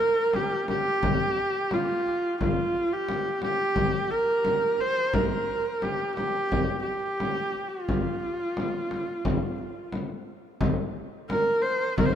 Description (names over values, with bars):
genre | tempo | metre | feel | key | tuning
mongolian traditional, Mongolian folk | 88 BPM | 4/4 | straight | unclear | A4 = 440 Hz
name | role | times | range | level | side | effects
clear horsehead fiddle | melody | 0.0-12.2 s | F4 to C5 | -25 LUFS | right 1 dB | none
frame drum | percussion | 0.0-12.1 s | none | -29 LUFS | left 1 dB | none
room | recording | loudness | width
moderate huge ambient reverb, RT60 4.1 s | dark, warm production | -24 LUFS | side -9 dB against mid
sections
0.0-10.6 A section; 10.6-12.2 B section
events
none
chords
none